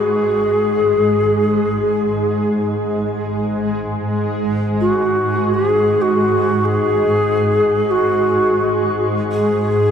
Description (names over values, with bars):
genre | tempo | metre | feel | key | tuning
world meditative, free-time meditation music | free time | none | none | G# minor pentatonic | A4 = 442 Hz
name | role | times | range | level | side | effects
Native American-style cedar flute | melody | 0.0-9.9 s | F#4 to G#4 | -16 LUFS | equal | shimmer reverb, tape echo
granular cloud pad | drone | 0.0-9.9 s | G#2 to G#3 | -19 LUFS | equal | built-in reverb
tubular bells | texture | 0.0-4.5 s | B4 | -46 LUFS | right 1 dB | none
room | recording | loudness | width
wet huge ambient reverb, RT60 7.4 s | dark, warm production | -14 LUFS | side -8 dB against mid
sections
0.0-9.9 A section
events
none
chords
none